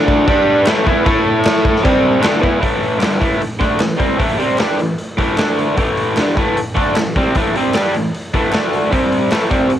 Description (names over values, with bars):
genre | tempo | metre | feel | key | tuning
garage rock duo or trio | 152 BPM | 4/4 | straight | A minor | A4 = 440 Hz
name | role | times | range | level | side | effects
raw garage guitar | riff | 0.0-9.7 s | G2 to A4 | -14 LUFS | equal | overdrive, cassette tape
raw garage drum kit | drums | 0.1-9.8 s | crash cymbal, hi-hat, kick drum, snare drum | -18 LUFS | equal | cassette tape
group handclap | percussion | 0.7-9.4 s | none | -31 LUFS | right 3 dB | none
room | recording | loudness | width
light reverb, small room ambience | home recording on cassette | -13 LUFS | side -11 dB against mid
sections
0.0-2.6 A section; 2.6-9.8 B section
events
none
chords
0.3 G5; 0.7 A5; 1.8 C5; 2.2 A5; 2.6 Am; 5.4 D5; 5.8 Am; 8.5 D5; 8.9 C5